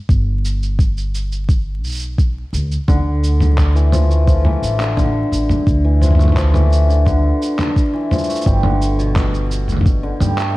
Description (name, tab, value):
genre	folktronica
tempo	86 BPM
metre	4/4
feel	straight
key	D dorian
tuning	A4 = 439 Hz
part	upright bass	bass	0.1-10.6 s	G1 to G2	-16 LUFS	equal	none
part	electronic kick drum	drums	0.1-10.0 s	none	-15 LUFS	equal	none
part	lo-fi sampler-style drum kit	drums	0.1-10.5 s	handclaps, shaker, toms	-21 LUFS	equal	overdrive
part	hammered dulcimer	arpeggios	2.9-10.6 s	B2 to A3	-20 LUFS	left 1 dB	digital delay
room	light reverb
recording	dark, warm production, vinyl crackle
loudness	-14 LUFS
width	side -19 dB against mid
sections	0.0-10.6 A section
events	none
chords	0.0 G; 2.9 Dmadd9; 8.5 Gadd9